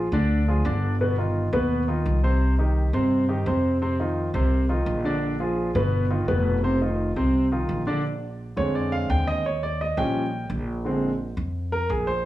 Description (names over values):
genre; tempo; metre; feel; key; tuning
Afro-Cuban jazz; 170 BPM; 4/4; straight; Bb mixolydian; A4 = 441 Hz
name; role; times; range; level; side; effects
clear concert grand piano; accompaniment; 0.0-12.2 s; B2 to G5; -24 LUFS; equal; none
upright bass; bass; 0.0-12.3 s; F1 to G2; -25 LUFS; equal; none
room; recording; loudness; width
light reverb, studio ambience; home recording on cassette, small room ambience; -22 LUFS; side -15 dB against mid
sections
0.0-8.0 A section; 8.0-12.3 B section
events
grand piano solo 8.0-12.3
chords
0.0 Bb7 (rootless); 1.0 Gaug7; 2.4 Cm; 3.8 F5; 5.2 Bb7; 5.9 Gaug7; 6.6 F5; 8.0 Bb7; 9.4 Eb7; 10.8 Bb7